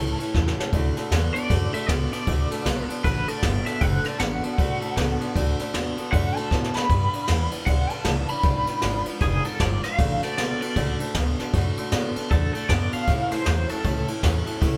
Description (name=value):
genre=rockabilly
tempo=156 BPM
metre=4/4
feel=swing 61% on 8ths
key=D major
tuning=A4 = 438 Hz
part: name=electric guitar through a small old amp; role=melody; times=0.0-14.1 s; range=G#4 to B5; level=-31 LUFS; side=equal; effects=tremolo
part: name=picked old ladder-braced acoustic guitar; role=accompaniment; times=0.0-14.8 s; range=A2 to B4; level=-34 LUFS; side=equal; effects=none
part: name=electric guitar through a small old amp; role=riff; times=0.0-14.8 s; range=G2 to B3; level=-34 LUFS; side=equal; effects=none
part: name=upright bass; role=bass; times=0.0-14.8 s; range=E#1 to A2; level=-28 LUFS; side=equal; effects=none
part: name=jazz brush drum kit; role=drums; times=0.2-14.7 s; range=kick drum, ride cymbal, snare drum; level=-28 LUFS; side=equal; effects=none
room=light reverb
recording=band playing live in one room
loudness=-24 LUFS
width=mono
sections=0.7-14.8 A section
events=drum fill 0.3-0.7, 6.5-6.9; clean electric guitar solo 0.7-14.8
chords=0.0 A; 0.7 D; 6.9 G; 8.4 G#dim7; 10.0 D; 13.1 A